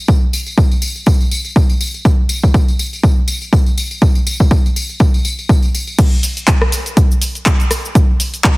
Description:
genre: house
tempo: 122 BPM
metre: 4/4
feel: swing 56% on 16ths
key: none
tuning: none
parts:
  - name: electronic kick drum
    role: drums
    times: 0.1-8.6 s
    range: none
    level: -12 LUFS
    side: equal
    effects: overdrive, studio reverb
  - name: tambourine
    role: percussion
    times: 0.1-6.0 s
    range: none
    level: -22 LUFS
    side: left 2 dB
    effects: none
  - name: punchy analog drum machine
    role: drums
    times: 6.0-8.6 s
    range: crash cymbal, handclaps, hi-hat, rim click, shaker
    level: -17 LUFS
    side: equal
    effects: overdrive, studio reverb
room: little or no reverb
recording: heavily compressed radio sound, multiband compression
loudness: -12 LUFS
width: side -23 dB against mid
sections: 0.0-6.0 A section; 6.0-8.6 B section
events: drop 6.0-8.6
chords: none

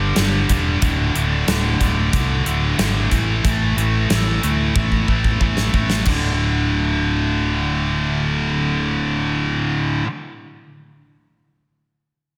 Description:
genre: hard rock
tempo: 91 BPM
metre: 4/4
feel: straight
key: unclear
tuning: A4 = 440 Hz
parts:
  - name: scooped high-gain guitar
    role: riff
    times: 0.0-10.1 s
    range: D2 to A3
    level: -26 LUFS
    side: equal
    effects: distortion
  - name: scooped high-gain guitar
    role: riff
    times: 0.0-10.1 s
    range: D2 to A3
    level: -25 LUFS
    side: equal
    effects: distortion
  - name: fingered electric bass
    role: bass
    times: 0.0-10.0 s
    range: D1 to D2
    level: -24 LUFS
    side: equal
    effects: none
  - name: gated 80s drum kit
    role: drums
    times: 0.2-6.2 s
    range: crash cymbal, hi-hat, kick drum, snare drum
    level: -24 LUFS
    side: equal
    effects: none
room: moderate concert hall reverb, RT60 1.9 s, studio reverb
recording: big arena sound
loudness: -19 LUFS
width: mono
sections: 0.0-6.1 A section; 6.1-8.7 B section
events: drum fill 4.8-6.1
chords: 0.0 G5; 0.8 D5; 3.1 A5; 6.1 D5

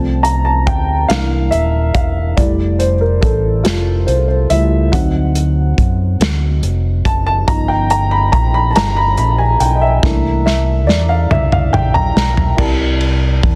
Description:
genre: slow gospel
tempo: 47 BPM (dotted quarters)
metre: 6/8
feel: straight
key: F major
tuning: A4 = 439 Hz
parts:
  - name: dark upright piano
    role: accompaniment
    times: 0.0-13.6 s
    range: C3 to B5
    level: -19 LUFS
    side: equal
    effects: none
  - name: fingered electric bass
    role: bass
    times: 0.0-13.6 s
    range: Eb1 to F#2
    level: -18 LUFS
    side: equal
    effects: none
  - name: warm soul drum kit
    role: drums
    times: 0.2-13.6 s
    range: crash cymbal, hi-hat, kick drum, ride cymbal, snare drum, toms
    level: -19 LUFS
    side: equal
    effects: none
room: light reverb, small room ambience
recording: dense, heavily limited modern master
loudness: -14 LUFS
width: mono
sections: 0.0-12.6 A section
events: upright piano solo 0.0-12.6; drum fill 10.0-12.6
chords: 0.0 F/C; 1.1 C7; 2.4 Fmaj9; 4.9 D7b9; 7.5 G7alt; 10.0 C13

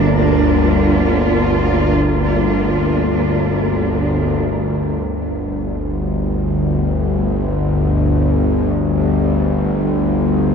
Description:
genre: dark ambient drone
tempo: free time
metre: none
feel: none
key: G minor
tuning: A4 = 440 Hz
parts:
  - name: warm symphonic cello section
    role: sustained chords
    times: 0.0-4.4 s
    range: Bb3 to Bb4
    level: -20 LUFS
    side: right 1 dB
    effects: shimmer reverb
  - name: bowed-like drone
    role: drone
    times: 0.0-10.5 s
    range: G1 to D2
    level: -15 LUFS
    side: left 1 dB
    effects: built-in reverb
  - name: flickering grainy texture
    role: texture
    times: 0.0-4.4 s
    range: Bb4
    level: -28 LUFS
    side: right 1 dB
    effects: built-in reverb, shimmer reverb
room: wet cathedral reverb, RT60 7.4 s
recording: worn, warbling old tape, cassette tape, warbly pitch drift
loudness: -14 LUFS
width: side -6 dB against mid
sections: 0.0-4.4 A section; 4.4-10.5 B section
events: none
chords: 0.0 Gm; 4.4 G5

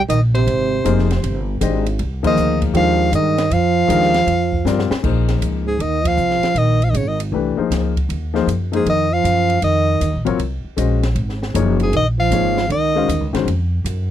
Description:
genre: modal jazz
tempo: 157 BPM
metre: 4/4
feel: swing 66% on 8ths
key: F dorian, Bb minor from 5.0 s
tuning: A4 = 439 Hz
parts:
  - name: bright soprano saxophone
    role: melody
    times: 0.0-13.3 s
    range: Ab4 to F5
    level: -19 LUFS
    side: left 3 dB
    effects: none
  - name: upright bass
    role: bass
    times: 0.0-14.1 s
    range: F1 to G2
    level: -20 LUFS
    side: equal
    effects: none
  - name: mellow trombone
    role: second line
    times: 0.1-13.3 s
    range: Ab2 to F3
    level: -20 LUFS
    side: right 8 dB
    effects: none
  - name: open jazz drum kit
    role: drums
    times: 0.1-14.0 s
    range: crash cymbal, hi-hat, kick drum, ride cymbal, snare drum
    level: -28 LUFS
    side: equal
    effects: none
  - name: warm baby grand piano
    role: accompaniment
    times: 0.8-13.5 s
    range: Eb3 to F5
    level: -20 LUFS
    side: left 9 dB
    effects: none
room: little or no reverb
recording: dry, close 1970s-style studio recording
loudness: -15 LUFS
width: side -11 dB against mid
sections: 0.0-5.0 A section; 5.0-14.1 B section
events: band accent 2.2, 6.0; drum fill 4.7-5.0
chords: 0.0 Fm9; 5.0 Bb9sus4; 11.2 Ab9sus4

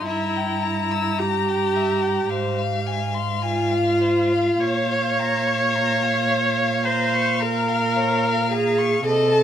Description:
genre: classical, slow romantic movement for string quartet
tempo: 54 BPM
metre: 4/4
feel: rubato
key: unclear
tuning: A4 = 436 Hz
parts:
  - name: rich violin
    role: melody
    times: 0.0-9.4 s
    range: F5 to Bb5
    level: -27 LUFS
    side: left 11 dB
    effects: none
  - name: rich violin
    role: second line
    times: 0.0-9.4 s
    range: C5 to E6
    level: -29 LUFS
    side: left 4 dB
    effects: none
  - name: rich viola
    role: accompaniment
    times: 0.0-9.4 s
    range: E4 to Db5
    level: -21 LUFS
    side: right 1 dB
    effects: none
  - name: warm cello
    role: bass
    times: 0.1-9.4 s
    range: G2 to C3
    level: -26 LUFS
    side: right 4 dB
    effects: none
room: moderate recital hall reverb, RT60 1.3 s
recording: close, detailed microphones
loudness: -19 LUFS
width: side -9 dB against mid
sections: 0.0-9.4 A section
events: none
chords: 0.1 Edim/G; 2.3 Fm/Ab; 4.6 Bbm

